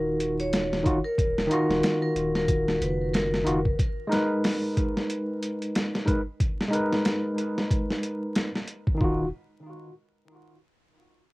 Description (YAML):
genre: trip hop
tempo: 92 BPM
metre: 4/4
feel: swing 58% on 16ths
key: Eb minor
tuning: A4 = 440 Hz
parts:
  - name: vibraphone with hard mallets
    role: melody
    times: 0.0-3.7 s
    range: Bb4 to Db5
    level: -29 LUFS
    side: equal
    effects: auto-pan, cassette tape, tape echo
  - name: tine electric piano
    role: accompaniment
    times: 0.0-9.3 s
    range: Eb3 to Cb5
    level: -27 LUFS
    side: equal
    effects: harmonic tremolo, low-pass filter, cassette tape, tape echo
  - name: round analog bass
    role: bass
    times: 0.0-3.8, 9.0-9.3 s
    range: Eb1 to Gb1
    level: -33 LUFS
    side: equal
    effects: none
  - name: boom bap sampler-style drum kit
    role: drums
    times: 0.2-9.2 s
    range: hi-hat, kick drum, snare drum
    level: -26 LUFS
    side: equal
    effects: overdrive, cassette tape
room: light reverb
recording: home recording on cassette, vinyl crackle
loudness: -24 LUFS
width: side -21 dB against mid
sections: 0.0-9.0 A section; 9.0-11.3 B section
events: filter sweep on tine electric piano 0.0-9.0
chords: 0.0 Ebmadd9; 3.8 Abmadd9; 9.0 Ebmadd9